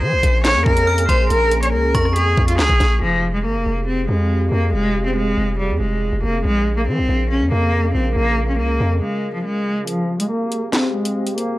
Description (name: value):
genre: hip hop, drill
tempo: 140 BPM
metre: 4/4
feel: half-time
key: F minor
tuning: A4 = 437 Hz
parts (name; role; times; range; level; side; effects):
- clear cello; melody; 0.0-11.6 s; F3 to Db5; -19 LUFS; equal; low-pass filter
- dark analog pad; sustained chords; 0.0-11.6 s; Db3 to F5; -26 LUFS; equal; chorus
- long sustained 808-style bass; bass; 0.0-9.0 s; F1 to F3; -19 LUFS; equal; none
- drill drum kit; drums; 0.2-2.9, 9.9-11.5 s; handclaps, hi-hat, kick drum, rim click, snare drum; -19 LUFS; equal; none
- metallic FM bell; second line; 0.9-3.0 s; C6 to F6; -27 LUFS; right 2 dB; chorus, analog delay
room: little or no reverb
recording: dry, gritty hardware recording, cassette tape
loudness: -16 LUFS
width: side -17 dB against mid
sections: 0.0-3.0 A section; 3.0-9.9 B section; 9.9-11.6 C section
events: break 9.0-9.9; kick muted 9.9-11.6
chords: 0.0 Bbm7; 3.0 Fmadd9; 6.4 Bbm7; 9.9 Fmadd9